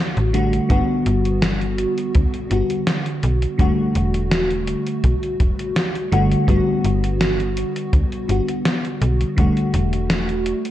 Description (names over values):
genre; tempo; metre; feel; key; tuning
vaporwave; 83 BPM; 4/4; straight; G major; A4 = 440 Hz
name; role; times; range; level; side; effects
FM electric piano with soft pad layer; accompaniment; 0.0-10.7 s; D3 to F#4; -20 LUFS; equal; phaser, analog chorus, cassette tape, analog delay
slap-like FM bass; bass; 0.2-10.5 s; E1 to D2; -20 LUFS; equal; none
gated 80s digital drum machine; drums; 0.2-10.7 s; hi-hat, snare drum; -23 LUFS; equal; gated reverb, gated reverb snare
kick drum; drums; 0.7-9.5 s; none; -20 LUFS; equal; none
room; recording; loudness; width
light reverb, studio reverb; dark, warm production, cassette tape; -17 LUFS; side -13 dB against mid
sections
0.0-10.7 A section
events
none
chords
0.0 Em11 (rootless); 0.7 Gmaj7; 3.6 Em11; 6.5 Gmaj7; 9.4 Em11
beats
| 0.70 1.43 2.15 2.87 | 3.60 4.32 5.04 5.76 | 6.49 7.21 7.93 8.65 | 9.38 10.10